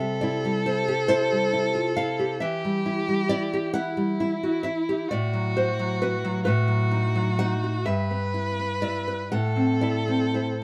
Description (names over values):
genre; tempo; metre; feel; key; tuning
romantic duo for violin and classical guitar; 37-47 BPM (dotted quarters); 6/8; rubato; E minor; A4 = 440 Hz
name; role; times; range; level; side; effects
rich violin; melody; 0.0-10.6 s; E4 to B4; -31 LUFS; equal; none
nylon-string guitar; accompaniment; 0.0-10.6 s; G2 to F#5; -26 LUFS; equal; none
room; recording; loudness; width
moderate studio ambience, RT60 0.5 s; dark, warm production; -25 LUFS; mono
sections
0.0-10.6 A section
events
none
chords
0.0 C; 2.4 Em; 5.1 Am69; 6.5 B7/A; 7.9 Em/G; 9.3 Amadd11